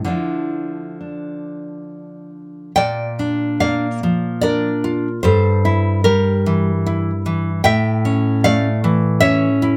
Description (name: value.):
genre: romantic duo for nylon-string guitar and classical guitar.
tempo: 64-77 BPM.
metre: 3/4.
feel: rubato.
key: unclear.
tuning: A4 = 440 Hz.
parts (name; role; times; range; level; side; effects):
nylon-string guitar; melody; 0.0-2.3 s; D4 to E4; -32 LUFS; equal; none.
nylon-string guitar; accompaniment; 0.0-9.8 s; G2 to G5; -18 LUFS; equal; none.
room: light reverb.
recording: none.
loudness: -18 LUFS.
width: mono.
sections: 0.0-2.8 A section; 2.8-9.8 B section.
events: none.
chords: 0.1 Dm; 2.8 Bb; 5.2 Edim/G; 7.6 A7.